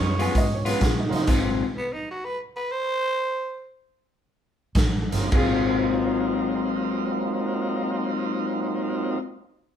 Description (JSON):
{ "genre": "electric blues shuffle", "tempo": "103-129 BPM", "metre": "4/4", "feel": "swing 66% on 8ths", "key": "Ab mixolydian", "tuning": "A4 = 439 Hz", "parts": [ { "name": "growling tenor saxophone", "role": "melody", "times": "0.0-3.7 s", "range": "Cb4 to Db5", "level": "-27 LUFS", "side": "right 2 dB", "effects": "none" }, { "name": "tonewheel organ", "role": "accompaniment", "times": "0.0-1.3, 5.1-9.2 s", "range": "Ab2 to F4", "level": "-28 LUFS", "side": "right 3 dB", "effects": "slow rotary speaker, overdrive" }, { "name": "vintage muted fingered electric bass", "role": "bass", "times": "0.0-1.6, 4.7-9.1 s", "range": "G1 to Db3", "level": "-29 LUFS", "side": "right 1 dB", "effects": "none" }, { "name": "warm upright piano", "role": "second line", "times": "0.2-1.4, 5.4-9.2 s", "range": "Eb4 to Ab5", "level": "-31 LUFS", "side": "right 3 dB", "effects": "none" }, { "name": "electric guitar through a small old amp", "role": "riff", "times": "0.2-1.6, 5.3-9.2 s", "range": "Ab2 to F4", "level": "-26 LUFS", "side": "left 6 dB", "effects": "none" }, { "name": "raw garage drum kit", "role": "drums", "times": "0.2-1.4, 4.8-5.5 s", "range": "crash cymbal, hi-hat, kick drum, snare drum", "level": "-24 LUFS", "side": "equal", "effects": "none" } ], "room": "wet large studio reverb, RT60 0.8 s", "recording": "band playing live in one room", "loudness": "-22 LUFS", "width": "side -9 dB against mid", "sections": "0.0-5.3 A section; 5.3-9.8 B section", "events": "slowing down 1.3-5.3; stop 1.3-4.8", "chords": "0.0 Db7; 1.3 Ab6; 4.8 Gm11; 5.3 Ab13", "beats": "0.34 0.81 | 1.27 1.74 2.21 2.69 | 3.18 3.69 4.21 4.75 | 5.32 5.90 6.49 7.07 | 7.65 8.23 8.81" }